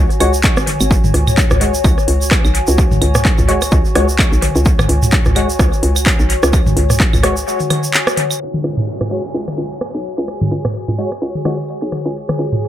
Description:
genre	minimal techno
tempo	128 BPM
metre	4/4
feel	swing 57% on 16ths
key	unclear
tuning	A4 = 440 Hz
part	hollow knocking FM bass	bass	0.0-12.7 s	G#1 to C#2	-17 LUFS	equal	sidechain pumping, high-pass filter
part	warbly tape-like pad	texture	0.0-12.7 s	F#4 to G#5	-23 LUFS	left 2 dB	chorus, built-in reverb, sidechain pumping
part	house drum kit	drums	0.1-12.5 s	handclaps, hi-hat	-19 LUFS	equal	overdrive, dub echo
part	tube shaker	percussion	0.1-8.4 s	none	-25 LUFS	right 4 dB	none
part	percussive organ stab	stabs	0.2-11.6 s	G#3 to C#5	-21 LUFS	left 2 dB	ensemble chorus, dub echo
part	minimal click drum kit	percussion	0.2-12.6 s	claves, rim click, toms	-19 LUFS	right 1 dB	none
part	electronic kick drum	drums	0.4-7.1 s	none	-14 LUFS	equal	overdrive
part	downlifter	sound effects	8.4-12.2 s	none	-32 LUFS	equal	none
part	bubbling stepped-filter texture	texture	9.3-12.7 s	G#4	-31 LUFS	right 7 dB	chorus, built-in reverb, sidechain pumping
room	light reverb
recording	echo-heavy mix, low-pass filter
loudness	-12 LUFS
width	side -12 dB against mid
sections	0.0-8.4 A section; 8.4-12.7 B section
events	break 7.5-8.4; filter sweep 8.4-12.7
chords	0.0 C#sus4

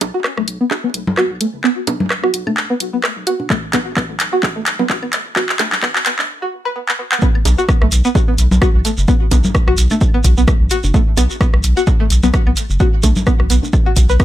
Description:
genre	minimal techno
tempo	129 BPM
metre	4/4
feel	swing 56% on 16ths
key	unclear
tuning	A4 = 438 Hz
part	round analog bass	bass	0.0-14.2 s	F#1 to B1	-15 LUFS	equal	tube saturation, sidechain pumping, high-pass filter
part	house drum kit	drums	0.0-14.2 s	handclaps, hi-hat, rim click	-18 LUFS	equal	high-pass filter on hats, high-pass filter on snare
part	bongos, congas and woodblock	percussion	0.0-13.8 s	none	-22 LUFS	right 1 dB	digital delay
part	string-like resonator pluck	riff	0.1-14.2 s	A3 to B4	-19 LUFS	equal	chorus, sidechain pumping, ping-pong delay
part	electronic kick drum	drums	3.5-14.2 s	none	-15 LUFS	equal	none
part	shekere	percussion	7.2-14.2 s	none	-24 LUFS	right 4 dB	none
room	light reverb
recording	high-pass filter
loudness	-13 LUFS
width	side -13 dB against mid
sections	0.0-7.2 A section; 7.2-14.2 B section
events	build-up 0.0-7.2; drum fill 0.0-6.3, 6.9-7.2; filter sweep on synth pluck 0.0-7.2; filter sweep 0.0-7.2; break 6.3-7.2; drop 7.2-14.2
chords	0.0 B5

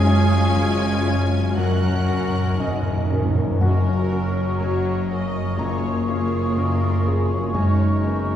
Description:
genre	cinematic, emotional film score for orchestra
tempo	61 BPM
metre	4/4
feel	rubato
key	F# major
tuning	A4 = 440 Hz
part	rich studio violin section	melody	0.0-8.4 s	C#5 to G#6	-37 LUFS	left 1 dB	none
part	clear oboe	second line	0.0-8.4 s	F#4 to A#4	-35 LUFS	equal	none
part	mellow hollow concert flute	second line	0.0-8.4 s	F#5 to C#6	-32 LUFS	equal	none
part	rich studio violin section	second line	0.0-8.4 s	G#3 to G#5	-35 LUFS	left 1 dB	none
part	felt-muted upright piano	accompaniment	0.0-8.4 s	F#1 to A#5	-24 LUFS	left 1 dB	none
part	rich symphonic viola section	accompaniment	0.0-8.4 s	B3 to D#5	-32 LUFS	right 1 dB	none
part	mellow French horn section	sustained chords	0.0-8.4 s	D#3 to A#4	-28 LUFS	left 3 dB	none
part	concert harp	arpeggios	0.0-8.4 s	F#2 to C#5	-27 LUFS	left 3 dB	none
part	rich symphonic cello section	bass	0.0-8.4 s	D#3 to A#3	-26 LUFS	right 1 dB	none
part	rich symphonic double bass section	bass	0.0-8.4 s	F#1 to F#2	-26 LUFS	right 2 dB	none
part	timpani	percussion	1.6-8.4 s	F#2	-25 LUFS	equal	none
part	warm clarinet	second line	3.6-8.4 s	D#4 to F#4	-34 LUFS	left 2 dB	none
room	wet scoring stage reverb, RT60 1.7 s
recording	heard from further back in the room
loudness	-18 LUFS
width	side -10 dB against mid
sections	0.0-3.6 A section; 3.6-8.4 A section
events	timpani fill 1.6-3.6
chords	0.0 C#/F#; 1.6 F#; 5.6 C#/F#; 7.5 D#m7/F#

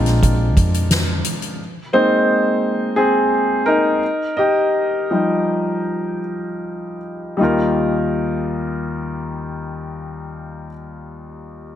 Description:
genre	piano-driven pop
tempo	75-88 BPM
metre	4/4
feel	straight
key	Eb major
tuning	A4 = 440 Hz
part	clear concert grand piano	accompaniment	0.0-11.8 s	Eb2 to Eb5	-18 LUFS	left 1 dB	plate reverb
part	hollow-body short-scale picked electric bass	bass	0.0-1.2 s	Bb1 to F2	-17 LUFS	equal	none
part	soft-mallet drum kit	drums	0.1-1.6 s	hi-hat, kick drum, snare drum	-19 LUFS	equal	none
room	moderate studio reverb, RT60 0.8 s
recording	none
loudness	-16 LUFS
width	side -10 dB against mid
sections	0.0-7.4 A section; 7.4-10.6 B section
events	grand piano solo 0.0-7.4; slowing down 1.6-7.4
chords	0.0 Bb7; 1.6 Abadd9; 4.0 Ebadd9

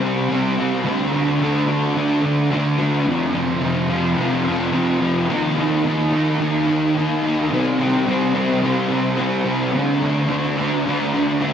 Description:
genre	rock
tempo	108 BPM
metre	4/4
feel	straight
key	F major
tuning	A4 = 438 Hz
part	fuzz guitar	solo	0.0-11.5 s	F2 to Eb4	-17 LUFS	equal	distortion, analog chorus, analog delay
room	wet huge ambient reverb, RT60 4.2 s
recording	dreamy mix soaked in reverb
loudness	-17 LUFS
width	side -8 dB against mid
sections	0.0-3.1 A section; 3.1-11.5 B section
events	none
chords	0.0 C5; 0.9 D5; 3.1 F5; 5.3 Eb5; 7.5 C5; 9.8 D5

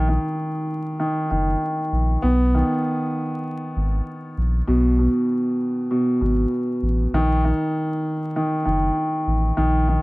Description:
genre	hip hop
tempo	98 BPM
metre	4/4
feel	swing 62% on 16ths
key	Eb minor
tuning	A4 = 443 Hz
part	warm grand piano	accompaniment	0.0-10.0 s	B2 to B3	-21 LUFS	equal	cassette tape, high-pass filter, low-pass filter, plate reverb
part	saturated sub bass	bass	0.0-10.0 s	Gb1 to B1	-20 LUFS	equal	none
room	light reverb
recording	vinyl crackle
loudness	-19 LUFS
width	side -22 dB against mid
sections	0.0-10.0 A section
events	none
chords	0.0 Eb5; 2.2 B; 7.1 Eb5

